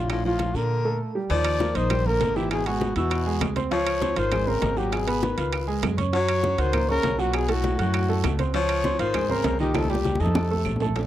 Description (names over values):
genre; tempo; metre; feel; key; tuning
Afro-Cuban jazz; 199 BPM; 4/4; straight; unclear; A4 = 439 Hz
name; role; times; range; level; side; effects
breathy trumpet; melody; 0.0-10.8 s; F4 to D5; -27 LUFS; left 2 dB; none
breathy baritone saxophone; second line; 0.0-10.8 s; A2 to Gb3; -32 LUFS; left 7 dB; tape echo
warm grand piano; accompaniment; 0.0-11.1 s; Eb3 to Gb6; -28 LUFS; right 4 dB; none
upright bass; bass; 0.0-11.1 s; Ab1 to Bb2; -27 LUFS; right 1 dB; none
bongos; percussion; 0.1-11.1 s; none; -35 LUFS; left 6 dB; none
claves; percussion; 0.1-10.8 s; none; -37 LUFS; right 13 dB; none
congas; percussion; 0.1-11.1 s; none; -31 LUFS; left 2 dB; none
guiro; percussion; 0.1-11.1 s; none; -43 LUFS; right 14 dB; none
timbales; percussion; 0.1-11.1 s; none; -32 LUFS; right 7 dB; none
room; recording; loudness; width
little or no reverb; dry, close 1970s-style studio recording; -21 LUFS; side -12 dB against mid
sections
0.0-1.3 A section; 1.3-11.0 B section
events
drum fill 9.8-11.0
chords
0.0 Bbmaj7; 1.3 Ebmaj9; 2.5 Ab7alt; 3.7 Dbmaj9; 4.9 Abm7; 5.5 Db; 6.1 Gb6; 7.3 Bsus2; 8.5 Dbmaj9; 9.8 Cm7; 10.4 F7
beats
| 0.10 0.40 0.70 1.00 | 1.30 1.60 1.91 2.21 | 2.51 2.81 3.11 3.42 | 3.72 4.02 4.32 4.62 | 4.92 5.23 5.53 5.83 | 6.13 6.43 6.74 7.04 | 7.34 7.64 7.94 8.24 | 8.55 8.85 9.15 9.45 | 9.75 10.05 10.36 10.66 | 10.96